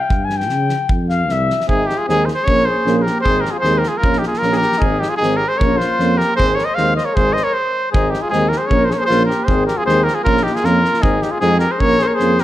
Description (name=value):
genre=balkan folk, Balkan brass band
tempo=154 BPM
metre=2/4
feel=straight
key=Ab major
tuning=A4 = 440 Hz
part: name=mellow flugelhorn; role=second line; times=0.0-12.4 s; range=Eb4 to Ab5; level=-22 LUFS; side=left 4 dB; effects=none
part: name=mellow tuba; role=bass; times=0.1-12.4 s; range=Ab1 to Db3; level=-21 LUFS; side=equal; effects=none
part: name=loose indie drum kit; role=percussion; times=0.1-12.4 s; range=kick drum, snare drum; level=-22 LUFS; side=equal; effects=none
part: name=clear cornet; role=melody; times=1.7-12.4 s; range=G4 to F5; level=-17 LUFS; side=equal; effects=none
part: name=warm euphonium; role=accompaniment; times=1.7-12.3 s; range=C4 to Db4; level=-26 LUFS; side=left 4 dB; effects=none
part: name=warm euphonium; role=accompaniment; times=1.7-12.4 s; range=Ab3 to Bb3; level=-23 LUFS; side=right 5 dB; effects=none
room=moderate recital hall reverb, RT60 1.3 s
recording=none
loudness=-14 LUFS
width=side -14 dB against mid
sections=0.0-1.7 A section; 1.7-7.9 B section; 7.9-12.4 B section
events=flugelhorn solo 0.0-1.7; stop 7.5-7.9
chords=0.1 Db5; 0.9 F5; 1.7 Ab; 2.5 Bbm; 3.2 Ab; 4.0 Bbm; 4.8 Ab; 5.6 Bbm; 6.4 Ab; 8.7 Bbm; 9.5 Ab; 10.3 Bbm; 11.0 Ab; 11.8 Bbm